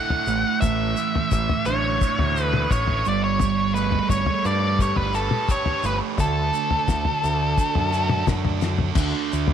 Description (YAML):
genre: psychedelic rock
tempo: 86 BPM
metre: 4/4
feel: straight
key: unclear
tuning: A4 = 439 Hz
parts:
  - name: octave-fuzz lead guitar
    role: melody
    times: 0.0-8.2 s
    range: A4 to F#5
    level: -24 LUFS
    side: left 1 dB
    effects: distortion, tape echo
  - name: thick fuzz guitar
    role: riff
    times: 0.0-9.5 s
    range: A2 to B4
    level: -26 LUFS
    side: right 13 dB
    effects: distortion, phaser
  - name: cloth-damped thuddy drum kit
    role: drums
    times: 0.1-9.5 s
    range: crash cymbal, kick drum, snare drum, toms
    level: -24 LUFS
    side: left 3 dB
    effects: none
  - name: growling picked electric bass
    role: bass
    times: 0.3-9.5 s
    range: G1 to G2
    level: -26 LUFS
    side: left 1 dB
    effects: overdrive
  - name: tube shaker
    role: percussion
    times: 0.3-9.5 s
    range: none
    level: -40 LUFS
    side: left 19 dB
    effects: none
room: light reverb, small room ambience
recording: 1960s-style stereo with parts hard left and right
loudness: -20 LUFS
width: side -9 dB against mid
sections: 0.0-9.0 A section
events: drum fill 8.6-9.0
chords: 0.0 Asus4; 3.1 Gadd9; 6.2 D; 9.0 D5